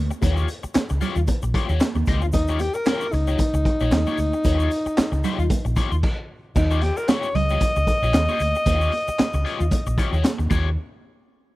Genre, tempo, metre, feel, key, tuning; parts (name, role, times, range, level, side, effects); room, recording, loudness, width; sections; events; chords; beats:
funk; 114 BPM; 4/4; swing 56% on 16ths; Eb mixolydian; A4 = 440 Hz
vintage muted fingered electric bass; bass; 0.0-10.8 s; Bb1 to Eb2; -22 LUFS; equal
crunchy overdriven guitar; accompaniment; 0.1-10.7 s; F4 to Eb5; -30 LUFS; left 6 dB; wah
tube shaker; percussion; 0.1-10.8 s; -46 LUFS; left 3 dB
crunchy breakbeat drum kit; drums; 0.2-10.6 s; crash cymbal, handclaps, hi-hat, kick drum, snare drum; -23 LUFS; equal
congas; percussion; 0.2-10.8 s; -29 LUFS; right 7 dB
breathy alto saxophone; melody; 2.3-10.2 s; Eb4 to Eb5; -24 LUFS; left 1 dB
small room ambience; -19 LUFS; side -18 dB against mid
0.0-6.6 A section; 6.6-10.8 B section
stop 6.0-6.6
0.0 Eb9; 10.8 N.C.
| 0.23 0.76 1.28 1.81 | 2.34 2.87 3.39 3.92 | 4.45 4.97 5.50 6.03 | 6.56 7.08 7.61 8.14 | 8.66 9.19 9.72 10.24